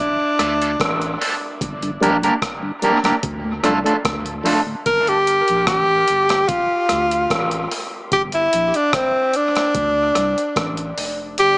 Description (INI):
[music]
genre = dub reggae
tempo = 74 BPM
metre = 4/4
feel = straight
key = unclear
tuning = A4 = 440 Hz
[part]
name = clear tenor saxophone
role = melody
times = 0.0-11.6 s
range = C4 to Bb4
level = -17 LUFS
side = equal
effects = dub echo
[part]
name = mellow tonewheel organ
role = accompaniment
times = 0.2-4.8 s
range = D2 to D4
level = -24 LUFS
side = equal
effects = slow rotary speaker, high-pass filter
[part]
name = electric guitar at the edge of break-up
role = accompaniment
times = 0.4-4.6 s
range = A3 to Bb4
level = -21 LUFS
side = right 1 dB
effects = high-pass filter, dub echo
[part]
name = soft dub sub bass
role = bass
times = 0.4-11.6 s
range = F1 to D2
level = -29 LUFS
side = equal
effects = none
[part]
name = breakbeat sampler-style drum kit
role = drums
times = 0.4-11.6 s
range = hi-hat, kick drum, rim click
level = -24 LUFS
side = equal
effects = dub echo
[sound]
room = moderate spring reverb, RT60 2.7 s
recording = small speaker sound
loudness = -16 LUFS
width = side -26 dB against mid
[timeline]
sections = 0.0-11.6 A section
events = kick muted 11.4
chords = 0.0 Dm; 1.6 Gm; 3.2 Dm; 4.9 N.C.; 6.5 Dm; 8.1 Gm; 9.7 Dm